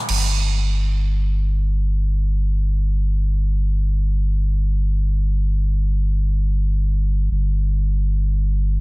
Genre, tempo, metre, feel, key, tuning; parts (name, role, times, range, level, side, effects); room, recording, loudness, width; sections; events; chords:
techno; free time; A4 = 441 Hz
saturated sub bass; bass; 0.1-8.8 s; G1; -18 LUFS; equal; low-pass filter
little or no reverb; dense, heavily limited modern master; -18 LUFS; side -24 dB against mid
0.1-8.8 A section